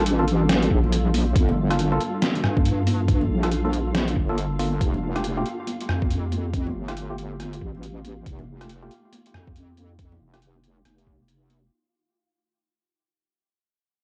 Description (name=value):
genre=deep dubstep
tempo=139 BPM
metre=4/4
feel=swing 61% on 16ths, half-time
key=unclear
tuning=A4 = 440 Hz
part: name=granular cloud pad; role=sustained chords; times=0.0-11.7 s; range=G3 to A4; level=-34 LUFS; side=equal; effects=built-in reverb, cassette tape
part: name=percussive organ stab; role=stabs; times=0.0-10.4 s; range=A3 to A4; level=-32 LUFS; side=equal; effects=chorus, cassette tape, dub echo
part: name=wobble bass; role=bass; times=0.0-11.7 s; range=F1 to G2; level=-27 LUFS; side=equal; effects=chorus, transformer saturation
part: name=flickering grainy texture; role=texture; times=0.1-11.7 s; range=F4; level=-38 LUFS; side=equal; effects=built-in reverb, cassette tape
part: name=trip hop sampler-style drum kit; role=drums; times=0.1-11.6 s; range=hi-hat, rim click, snare drum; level=-30 LUFS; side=equal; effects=overdrive
part: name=congas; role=percussion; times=0.2-11.6 s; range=none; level=-35 LUFS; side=equal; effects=dub echo
part: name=electronic kick drum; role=drums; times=0.7-11.2 s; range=none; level=-25 LUFS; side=equal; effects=overdrive
room=light reverb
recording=home recording on cassette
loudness=-23 LUFS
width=mono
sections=0.0-11.7 A section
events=fade-out 0.0-11.7; filter sweep on synth stab 0.0-11.7; filter sweep on ambient pad 0.0-11.7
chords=0.0 Gm7; 4.8 Fadd9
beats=0.06 0.49 0.92 | 1.36 1.79 2.22 2.65 | 3.08 3.51 3.94 4.38 | 4.81 5.24 5.67 6.10 | 6.54 6.97 7.40 7.83 | 8.26 8.69 9.12 9.56 | 9.99 10.42 10.85 11.28